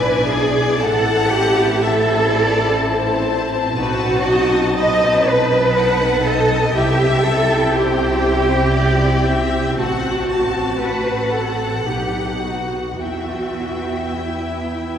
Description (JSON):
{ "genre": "classical, slow romantic movement for string orchestra", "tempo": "50-62 BPM", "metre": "3/4", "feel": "rubato", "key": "E minor", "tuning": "A4 = 440 Hz", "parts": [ { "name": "warm symphonic violin section", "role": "melody", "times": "0.0-15.0 s", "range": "F#5 to A5", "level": "-27 LUFS", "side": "left 5 dB", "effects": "none" }, { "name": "rich studio violin section", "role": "second line", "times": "0.0-15.0 s", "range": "B4 to A5", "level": "-25 LUFS", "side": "left 4 dB", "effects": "none" }, { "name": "rich symphonic viola section", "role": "accompaniment", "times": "0.0-15.0 s", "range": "B3 to F#4", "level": "-24 LUFS", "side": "left 1 dB", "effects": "none" }, { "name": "rich symphonic double bass section", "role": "bass", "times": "0.0-15.0 s", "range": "A1 to E2", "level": "-23 LUFS", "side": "right 2 dB", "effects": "none" }, { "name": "warm symphonic cello section", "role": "bass", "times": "0.0-15.0 s", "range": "E4 to D#5", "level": "-18 LUFS", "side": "right 1 dB", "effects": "none" } ], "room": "wet church reverb, RT60 3.8 s", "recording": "recorded in a church or concert hall", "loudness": "-15 LUFS", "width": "side -8 dB against mid", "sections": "0.0-15.0 A section", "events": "none", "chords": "0.0 E7/B; 0.8 Am; 3.8 B7b9; 6.8 C; 9.8 F#dim/A; 11.9 B; 13.0 Em" }